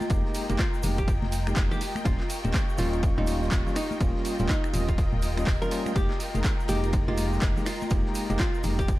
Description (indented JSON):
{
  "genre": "deep house",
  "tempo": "123 BPM",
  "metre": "4/4",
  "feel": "swing 61% on 16ths",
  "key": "F minor",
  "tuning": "A4 = 440 Hz",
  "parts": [
    { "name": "archtop guitar, miked and amplified", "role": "melody", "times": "0.0-8.9 s", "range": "Eb4 to Bb4", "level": "-34 LUFS", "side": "equal", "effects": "analog delay" },
    { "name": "airy breathy pad", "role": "sustained chords", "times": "0.0-9.0 s", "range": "Ab3 to Eb6", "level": "-39 LUFS", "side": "equal", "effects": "chorus, sidechain pumping" },
    { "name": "warm soul drum kit", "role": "drums", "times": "0.0-9.0 s", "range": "ride cymbal, snare drum", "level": "-46 LUFS", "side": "equal", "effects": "none" },
    { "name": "congas", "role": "percussion", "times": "0.0-8.8 s", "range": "none", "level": "-38 LUFS", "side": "left 3 dB", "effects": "none" },
    { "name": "egg shaker", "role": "percussion", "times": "0.0-9.0 s", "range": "none", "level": "-45 LUFS", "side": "right 3 dB", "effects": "none" },
    { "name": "rich symphonic string section", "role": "texture", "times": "0.0-9.0 s", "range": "F4 to G5", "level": "-37 LUFS", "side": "equal", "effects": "sidechain pumping" },
    { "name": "bell-like tine electric piano", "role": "stabs", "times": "0.1-8.8 s", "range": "G3 to Ab4", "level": "-33 LUFS", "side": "equal", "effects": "medium stereo tremolo, sidechain pumping" },
    { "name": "organ-like FM bass", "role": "bass", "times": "0.1-9.0 s", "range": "Eb1 to F1", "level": "-28 LUFS", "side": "equal", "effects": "tube saturation, sidechain pumping" },
    { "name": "electronic kick drum", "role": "drums", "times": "0.1-9.0 s", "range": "none", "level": "-27 LUFS", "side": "equal", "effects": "overdrive" },
    { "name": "punchy analog drum machine", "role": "drums", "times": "0.1-9.0 s", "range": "finger snaps, handclaps, hi-hat", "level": "-35 LUFS", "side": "right 1 dB", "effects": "overdrive" }
  ],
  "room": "light reverb",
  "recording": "dark, warm production",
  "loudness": "-24 LUFS",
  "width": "side -17 dB against mid",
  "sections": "0.0-9.0 A section",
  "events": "none",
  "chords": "0.0 Fm11; 2.1 Eb9; 6.0 Fm11"
}